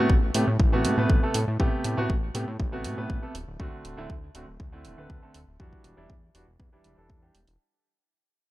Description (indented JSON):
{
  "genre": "nu-disco, nu disco",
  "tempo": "120 BPM",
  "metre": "4/4",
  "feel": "straight",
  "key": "A dorian",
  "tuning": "A4 = 440 Hz",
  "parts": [
    { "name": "bright concert grand piano", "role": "accompaniment", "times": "0.0-7.4 s", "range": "C3 to B4", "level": "-28 LUFS", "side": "right 1 dB", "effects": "vintage 12-bit sampler grit, sidechain pumping, low-pass filter, tape echo" },
    { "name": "fat analog bass", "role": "bass", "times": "0.0-7.6 s", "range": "D1 to A2", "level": "-29 LUFS", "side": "equal", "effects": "none" },
    { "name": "electronic kick drum", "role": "drums", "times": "0.1-7.2 s", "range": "none", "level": "-24 LUFS", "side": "equal", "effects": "none" },
    { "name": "electronic hi-hat", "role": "drums", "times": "0.3-7.6 s", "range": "none", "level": "-34 LUFS", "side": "right 3 dB", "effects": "none" }
  ],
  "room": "little or no reverb",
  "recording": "none",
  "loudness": "-23 LUFS",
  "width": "side -17 dB against mid",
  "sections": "0.0-7.6 A section",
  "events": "fade-out 0.0-7.6",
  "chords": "0.0 Am9; 3.3 D7; 5.6 Em9",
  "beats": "0.10 0.59 1.09 | 1.59 2.10 2.60 3.10 | 3.60 4.09 4.59 5.09 | 5.59 6.09 6.59 7.09"
}